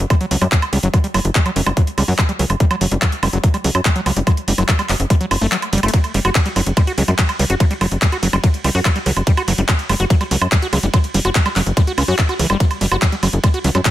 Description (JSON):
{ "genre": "psychedelic trance", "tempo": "144 BPM", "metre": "4/4", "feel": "straight", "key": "unclear", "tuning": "A4 = 440 Hz", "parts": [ { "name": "tight sequencer bass", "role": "bass", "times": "0.0-13.8 s", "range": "F#1 to F#2", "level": "-18 LUFS", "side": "equal", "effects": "none" }, { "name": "big-room dance drum kit", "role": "drums", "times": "0.0-13.9 s", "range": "handclaps, hi-hat, ride cymbal, woodblock", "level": "-20 LUFS", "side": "right 2 dB", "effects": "overdrive" }, { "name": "overdriven acid bass", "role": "riff", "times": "0.1-13.9 s", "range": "E3 to F#4", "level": "-22 LUFS", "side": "equal", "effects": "distortion, auto-pan, sidechain pumping, dub echo" }, { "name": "electronic kick drum", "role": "drums", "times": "0.1-13.9 s", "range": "none", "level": "-15 LUFS", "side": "equal", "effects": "none" } ], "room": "digital ambience", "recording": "none", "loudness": "-14 LUFS", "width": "side -14 dB against mid", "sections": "0.0-13.9 A section", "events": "kick drops out 5.5-5.9; drum fill 5.7", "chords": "0.0 F#5" }